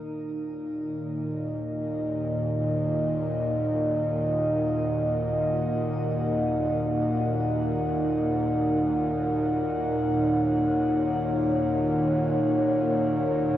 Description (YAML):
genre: dark ambient drone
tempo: free time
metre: none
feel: none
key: Eb minor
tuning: A4 = 435 Hz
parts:
  - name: dark analog pad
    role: sustained chords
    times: 0.0-13.6 s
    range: Eb4 to Gb5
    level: -25 LUFS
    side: equal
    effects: chorus, shimmer reverb
  - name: bowed-like drone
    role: drone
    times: 0.0-13.6 s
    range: Eb2 to Bb2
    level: -28 LUFS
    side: equal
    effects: built-in reverb
room: wet huge ambient reverb, RT60 8.5 s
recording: worn, warbling old tape, cassette tape, warbly pitch drift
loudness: -24 LUFS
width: side -12 dB against mid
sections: 0.0-13.6 A section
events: none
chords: 0.0 Ebm